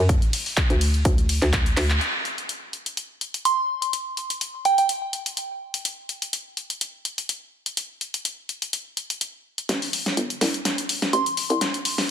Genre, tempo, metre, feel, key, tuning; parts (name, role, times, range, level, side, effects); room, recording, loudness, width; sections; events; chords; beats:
bass house; 125 BPM; 4/4; swing 54% on 16ths; A dorian; A4 = 440 Hz
hollow knocking FM bass; bass; 0.0-2.0, 9.7-11.7 s; G1 to F#2; -22 LUFS; equal; sidechain pumping, high-pass filter
big-room dance drum kit; drums; 0.1-12.1 s; handclaps, hi-hat, ride cymbal, snare drum; -25 LUFS; left 1 dB; high-pass filter on hats, studio reverb, high-pass filter on cymbals, high-pass filter on snare
electronic kick drum; drums; 0.1-1.6 s; -21 LUFS; equal; studio reverb
soft synth bell; melody; 3.5-4.9, 11.1-11.3 s; G5 to C6; -24 LUFS; right 3 dB; chorus, ping-pong delay
light reverb, digital ambience; dense, heavily limited modern master; -22 LUFS; side -9 dB against mid
0.0-2.0 A section; 2.0-9.7 B section; 9.7-12.1 C section
drop 0.0-2.0; drum fill 1.8, 9.7-12.1; band accent 1.9; build-up 9.7-12.1
0.0 N.C.; 9.7 Am
| 0.09 0.57 1.05 1.53 | 2.01 2.49 2.97 3.45 | 3.93 4.41 4.89 5.37 | 5.85 6.33 6.81 7.29 | 7.77 8.25 8.73 9.21 | 9.69 10.17 10.65 11.13 | 11.61